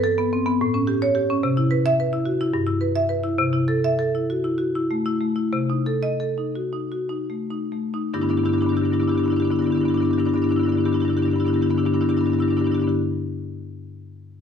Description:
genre	classical, contemporary piece for solo marimba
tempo	140-220 BPM (eighths)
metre	7/8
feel	rubato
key	G major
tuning	A4 = 441 Hz
part	marimba with medium hard mallets	solo	0.0-12.9 s	G2 to E5	-20 LUFS	left 1 dB	none
room	light reverb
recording	close, detailed microphones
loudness	-20 LUFS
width	side -8 dB against mid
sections	0.0-8.1 A section; 8.1-13.8 B section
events	slowing down 2.4-8.1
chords	0.0 Gadd9; 0.6 A7; 1.4 Cmaj7; 2.5 G6; 3.4 C6; 5.5 Cm6; 8.1 G6

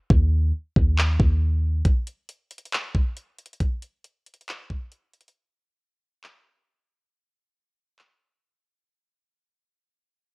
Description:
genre	hip hop, atmospheric cloud-rap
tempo	137 BPM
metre	4/4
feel	half-time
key	unclear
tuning	A4 = 440 Hz
part	warm 808-style bass	bass	0.1-1.8 s	Eb2	-19 LUFS	equal	none
part	trap drum kit	drums	0.1-8.1 s	handclaps, hi-hat, kick drum	-22 LUFS	equal	none
room	little or no reverb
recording	worn, warbling old tape, cassette tape, warbly pitch drift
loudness	-20 LUFS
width	side -36 dB against mid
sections	0.0-8.9 A section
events	break 0.0-1.9; fade-out 0.0-8.9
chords	none

